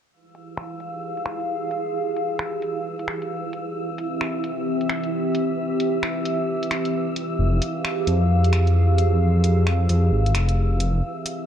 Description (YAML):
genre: future garage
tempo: 132 BPM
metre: 4/4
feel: swing 63% on 16ths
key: F harmonic minor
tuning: A4 = 441 Hz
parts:
  - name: dark analog pad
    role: sustained chords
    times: 0.8-11.5 s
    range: C4 to F5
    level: -25 LUFS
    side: equal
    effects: chorus, phaser
  - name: wind-like tuned noise texture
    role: texture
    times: 0.4-11.5 s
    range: E3 to E6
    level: -31 LUFS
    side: right 2 dB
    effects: built-in reverb
  - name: garage drum kit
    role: drums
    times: 0.3-11.4 s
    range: finger snaps, hi-hat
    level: -29 LUFS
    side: equal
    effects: low-pass filter on hats, studio ambience, low-pass filter on snare
  - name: dark detuned saw bass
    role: bass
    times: 7.4-11.0 s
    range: F1 to F2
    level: -18 LUFS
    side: equal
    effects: none
room: light reverb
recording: cassette tape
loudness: -20 LUFS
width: side -9 dB against mid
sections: 0.1-11.5 A section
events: filter sweep on drum 0.1-11.5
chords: 0.1 Fmadd9; 3.8 C; 7.4 Fmadd9